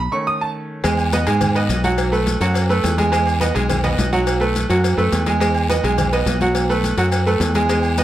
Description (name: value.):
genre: latin, salsa.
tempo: 210 BPM.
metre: 4/4.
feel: straight.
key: E major.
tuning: A4 = 435 Hz.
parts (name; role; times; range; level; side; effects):
bright concert grand piano; accompaniment; 0.0-8.0 s; D#3 to D#6; -19 LUFS; right 2 dB; none.
fingered electric bass; bass; 0.0-8.0 s; B1 to G#2; -20 LUFS; left 1 dB; none.
agogo bells and timbales; percussion; 0.8-8.0 s; none; -28 LUFS; right 4 dB; none.
cowbell; percussion; 0.8-8.0 s; none; -28 LUFS; left 6 dB; none.
guiro; percussion; 0.8-8.0 s; none; -35 LUFS; left 8 dB; none.
maracas; percussion; 0.8-8.0 s; none; -34 LUFS; left 4 dB; none.
congas; percussion; 0.9-8.0 s; none; -28 LUFS; left 1 dB; none.
room: light reverb.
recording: none.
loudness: -16 LUFS.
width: side -13 dB against mid.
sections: 0.8-8.0 A section.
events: break 0.0-0.8.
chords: 0.0 B7; 0.8 Emaj7; 2.0 B5; 3.1 Emaj7; 4.3 B5; 5.4 Emaj7; 6.6 B5.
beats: 0.27 0.56 | 0.84 1.13 1.42 1.70 | 1.99 2.27 2.56 2.84 | 3.13 3.42 3.70 3.99 | 4.27 4.56 4.84 5.13 | 5.41 5.70 5.98 6.27 | 6.55 6.84 7.12 7.41 | 7.69 7.98.